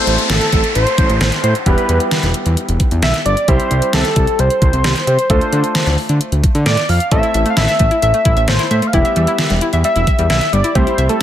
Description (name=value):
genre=synth-pop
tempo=132 BPM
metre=4/4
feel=straight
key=A minor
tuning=A4 = 441 Hz
part: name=wide unison lead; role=melody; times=0.0-11.2 s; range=A4 to F5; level=-17 LUFS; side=equal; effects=digital delay
part: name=clear baby grand piano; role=accompaniment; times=0.0-11.2 s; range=G3 to A4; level=-23 LUFS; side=equal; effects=none
part: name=downlifter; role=sound effects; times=0.0-3.5 s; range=none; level=-22 LUFS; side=left 1 dB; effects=none
part: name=fat analog bass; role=bass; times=0.1-11.1 s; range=E1 to D3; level=-16 LUFS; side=equal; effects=none
part: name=pop drum kit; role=drums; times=0.1-11.2 s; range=hi-hat, kick drum, snare drum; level=-17 LUFS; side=equal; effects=overdrive
part: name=analog pluck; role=arpeggios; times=7.1-11.2 s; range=G3 to E5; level=-21 LUFS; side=left 2 dB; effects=chorus, digital delay
room=light reverb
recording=none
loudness=-12 LUFS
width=side -11 dB against mid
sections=0.0-11.2 A section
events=none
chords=0.0 Am; 1.7 Em; 3.5 C6; 5.3 Dm7; 7.1 Am; 8.9 Em